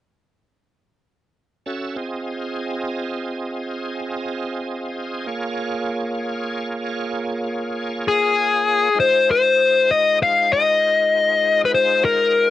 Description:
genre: blues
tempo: 66 BPM (dotted quarters)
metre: 12/8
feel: straight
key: F minor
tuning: A4 = 441 Hz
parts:
  - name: bright tonewheel organ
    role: sustained chords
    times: 1.7-12.5 s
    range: Ab3 to E5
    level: -26 LUFS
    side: right 2 dB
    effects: slow rotary speaker, overdrive, chorus vibrato
  - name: dark smooth lead guitar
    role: melody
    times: 8.1-12.5 s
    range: Ab4 to F5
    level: -14 LUFS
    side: left 3 dB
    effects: overdrive, cassette tape
room: light reverb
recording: home recording on cassette, nothing above 10.9 kHz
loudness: -18 LUFS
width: side -13 dB against mid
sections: 1.7-8.9 A section; 8.9-12.5 B section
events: none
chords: 1.7 Fm7; 5.3 Bbm7; 8.9 Fm7

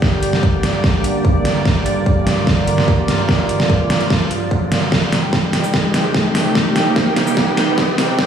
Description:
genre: heavy wobble dubstep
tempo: 147 BPM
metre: 4/4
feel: half-time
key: G minor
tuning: A4 = 439 Hz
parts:
  - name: evolving wavetable pad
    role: sustained chords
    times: 0.0-8.3 s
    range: C2 to G5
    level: -19 LUFS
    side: right 1 dB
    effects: chorus, built-in reverb, sidechain pumping
  - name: dubstep drum kit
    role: drums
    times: 0.0-8.3 s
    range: hi-hat, shaker, snare drum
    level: -18 LUFS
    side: right 1 dB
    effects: overdrive
  - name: electronic kick drum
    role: drums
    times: 0.0-8.3 s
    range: none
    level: -19 LUFS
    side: equal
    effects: overdrive
  - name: riser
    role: sound effects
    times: 3.4-8.3 s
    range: none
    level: -23 LUFS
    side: equal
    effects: none
room: moderate digital room reverb, RT60 1.1 s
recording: played on a big sound system in a bare room, stone room reverb, high-pass filter, studio ambience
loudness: -14 LUFS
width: side -8 dB against mid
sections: 0.0-8.3 A section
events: build-up 0.0-8.3; drum fill 0.0-8.3; filter sweep 0.0-8.3; riser 3.4-8.3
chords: 0.0 Gm; 4.9 Cm

